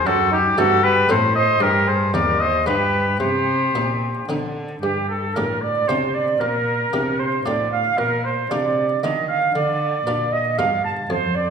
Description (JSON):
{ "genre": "classical, baroque-style sonata movement with continuo", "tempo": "115 BPM", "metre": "3/4", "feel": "straight", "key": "C minor", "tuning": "A4 = 445 Hz", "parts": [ { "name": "warm oboe", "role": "melody", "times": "0.0-11.5 s", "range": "G4 to A5", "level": "-22 LUFS", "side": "left 4 dB", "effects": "none" }, { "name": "silver concert flute", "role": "second line", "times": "0.0-11.5 s", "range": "D#4 to A5", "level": "-21 LUFS", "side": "right 5 dB", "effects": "none" }, { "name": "rich cello", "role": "bass", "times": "0.0-11.5 s", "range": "Eb2 to Eb3", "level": "-25 LUFS", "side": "equal", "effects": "none" }, { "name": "buff-stop harpsichord", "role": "accompaniment", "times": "0.1-11.5 s", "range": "Eb2 to G4", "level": "-27 LUFS", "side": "left 1 dB", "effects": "none" } ], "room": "wet recital hall reverb, RT60 1.4 s", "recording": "recorded in a church or concert hall", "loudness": "-17 LUFS", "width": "side -6 dB against mid", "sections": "0.0-4.8 A section; 4.8-11.5 A section", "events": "none", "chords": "0.1 F#dim7; 1.6 Cm/G; 2.7 G7; 3.2 Cm; 4.8 Gm; 6.4 Gm/Bb; 8.0 Bb" }